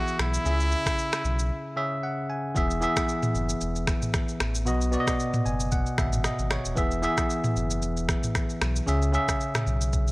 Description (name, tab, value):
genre	afrobeats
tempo	114 BPM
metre	4/4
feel	swing 55% on 16ths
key	E major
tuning	A4 = 440 Hz
part	brilliant trumpet	melody	0.0-2.0 s	E4 to F#4	-29 LUFS	equal	none
part	bell-like tine electric piano	accompaniment	0.0-10.1 s	B2 to G#5	-28 LUFS	equal	none
part	afro-pop drum kit	drums	0.1-10.1 s	finger snaps, kick drum, rim click, shaker, toms	-28 LUFS	equal	none
part	sub bass with octave	bass	0.2-10.1 s	D#1 to C#2	-27 LUFS	equal	none
room	digital ambience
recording	dry, gritty hardware recording, cassette tape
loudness	-24 LUFS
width	side -21 dB against mid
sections	0.0-2.6 A section; 2.6-10.1 B section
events	break 1.5-2.6; tine electric piano fill 1.5-2.6, 5.2-6.8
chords	0.5 C#m; 2.6 E; 4.7 B; 6.8 E; 8.9 C#m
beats	| 0.46 0.98 1.51 2.04 | 2.56 3.09 3.61 4.14 | 4.67 5.19 5.72 6.25 | 6.77 7.30 7.82 8.35 | 8.88 9.40 9.93